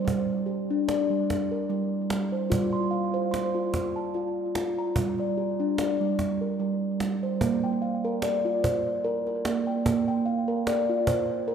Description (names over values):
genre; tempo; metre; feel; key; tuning
world meditative, meditative tuned percussion; 74 BPM; 3/4; swing 55% on 16ths; unclear; A4 = 439 Hz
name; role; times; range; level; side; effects
steel tongue drum; arpeggios; 0.0-11.5 s; G3 to C6; -25 LUFS; right 1 dB; tape echo
cajon; percussion; 0.1-11.3 s; none; -32 LUFS; right 1 dB; none
room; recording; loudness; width
wet echo chamber reverb, RT60 1.9 s, small room reverb; none; -24 LUFS; side -7 dB against mid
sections
0.0-7.4 A section; 7.4-11.5 B section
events
none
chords
0.0 Gm; 2.5 F/G; 5.0 Gm; 7.4 Bb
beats
| 0.06 0.88 1.69 | 2.51 3.33 4.15 | 4.96 5.78 6.60 | 7.41 8.23 9.04 | 9.86 10.67 11.49